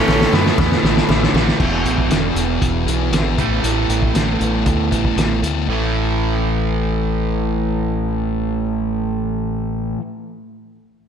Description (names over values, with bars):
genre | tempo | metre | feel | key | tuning
classic rock | 117 BPM | 4/4 | straight | unclear | A4 = 443 Hz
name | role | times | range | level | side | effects
raspy tenor saxophone | melody | 0.0-1.4 s | B3 to C#4 | -26 LUFS | equal | slapback echo, tape echo
bluesy overdriven lead guitar | second line | 0.0-1.4 s | E4 to A4 | -26 LUFS | right 3 dB | none
cranked stack guitar | riff | 0.0-1.6 s | A2 to A3 | -24 LUFS | left 2 dB | overdrive, slapback echo
crunchy overdriven guitar | riff | 0.0-10.0 s | E2 to A3 | -22 LUFS | right 9 dB | none
sludgy distorted guitar | riff | 0.0-10.0 s | A2 to A4 | -23 LUFS | left 10 dB | overdrive
growling fingered electric bass | bass | 0.1-9.9 s | E1 to F#2 | -22 LUFS | equal | overdrive
cloth-damped thuddy drum kit | drums | 0.1-5.5 s | crash cymbal, hi-hat, kick drum, snare drum | -19 LUFS | equal | none
cowbell | percussion | 0.1-1.5 s | none | -32 LUFS | left 7 dB | none
room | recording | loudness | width
moderate lush hall reverb, RT60 1.8 s, small room ambience | big arena sound | -16 LUFS | side -8 dB against mid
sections
0.0-1.6 A section; 1.6-5.7 B section; 5.7-9.8 C section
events
drum fill 0.0-1.6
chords
0.0 Asus2; 1.6 E; 3.4 Asus2; 5.7 A5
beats
0.08 0.58 1.09 | 1.60 2.10 2.61 3.12 | 3.63 4.15 4.66 5.17 | 5.68 6.20 6.71 7.22 | 7.73 8.24 8.76 9.27